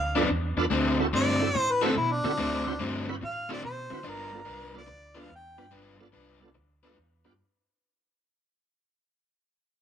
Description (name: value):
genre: blues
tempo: 144 BPM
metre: 4/4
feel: swing 66% on 8ths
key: G mixolydian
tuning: A4 = 439 Hz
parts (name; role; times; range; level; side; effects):
- warm harmonica; melody; 0.0-5.7 s; D4 to G5; -30 LUFS; equal; overdrive
- vintage muted fingered electric bass; bass; 0.0-7.4 s; G1 to D3; -34 LUFS; right 1 dB; none
- bright tonewheel organ; accompaniment; 0.2-7.3 s; B3 to C5; -30 LUFS; right 4 dB; slow rotary speaker, chorus vibrato
- crunchy overdriven guitar; riff; 0.2-7.3 s; G2 to B4; -29 LUFS; left 2 dB; spring reverb
room: moderate small room reverb, RT60 0.5 s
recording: rough rehearsal-room recording, warm saturation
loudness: -25 LUFS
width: side -8 dB against mid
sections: 0.0-7.4 A section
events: fade-out 0.0-7.4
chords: 0.0 G7; 0.7 D7; 4.1 G7